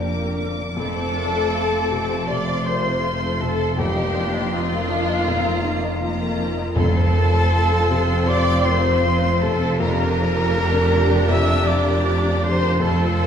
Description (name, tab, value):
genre	cinematic, emotional film score for orchestra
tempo	80 BPM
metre	4/4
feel	rubato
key	F major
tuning	A4 = 436 Hz
part	rich studio violin section	melody	0.0-13.3 s	Bb5 to D6	-32 LUFS	left 3 dB	none
part	bright concert flute	second line	0.0-13.3 s	F5 to E6	-27 LUFS	equal	none
part	warm clarinet	second line	0.0-13.3 s	F4 to E5	-29 LUFS	equal	none
part	warm studio violin section	second line	0.0-13.3 s	F4 to E5	-25 LUFS	left 1 dB	none
part	felt-muted upright piano	accompaniment	0.0-13.3 s	F2 to Eb5	-28 LUFS	left 2 dB	none
part	rich studio viola section	accompaniment	0.0-13.3 s	A3 to Bb4	-29 LUFS	right 2 dB	none
part	warm French horn section	sustained chords	0.0-13.3 s	Eb3 to G4	-29 LUFS	left 5 dB	none
part	rich studio cello section	bass	0.0-13.3 s	F2	-26 LUFS	right 1 dB	none
part	rich studio double bass section	bass	0.0-13.3 s	F1	-24 LUFS	right 2 dB	none
part	timpani	percussion	3.8-7.9 s	F2	-24 LUFS	equal	none
room	wet recital hall reverb, RT60 1.5 s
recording	heard from further back in the room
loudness	-17 LUFS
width	side -8 dB against mid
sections	0.0-13.3 A section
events	none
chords	0.0 Gm/F; 0.8 F; 3.8 Ebsus2/F; 6.8 F; 9.8 Gm/F